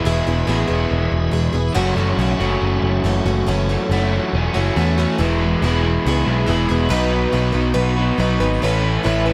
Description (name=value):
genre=folk rock and heartland rock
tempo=140 BPM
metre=4/4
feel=straight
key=E major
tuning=A4 = 440 Hz
part: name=picked plugged-in twelve-string acoustic guitar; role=accompaniment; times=0.0-9.3 s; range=F#2 to B4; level=-24 LUFS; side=equal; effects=none
part: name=tonewheel organ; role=sustained chords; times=0.0-5.2 s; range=E4 to E5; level=-35 LUFS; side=equal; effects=slow rotary speaker, chorus vibrato
part: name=crunchy overdriven guitar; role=riff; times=0.0-9.3 s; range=E2 to F#4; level=-23 LUFS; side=equal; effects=none
part: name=picked electric bass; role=bass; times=0.1-9.3 s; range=E1 to E2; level=-22 LUFS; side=equal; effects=none
room=light reverb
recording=none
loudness=-18 LUFS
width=mono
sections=0.0-3.5 A section; 3.5-5.2 B section; 5.2-9.3 C section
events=none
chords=0.0 E; 1.8 F#m7; 5.2 E; 6.9 B; 8.6 Aadd9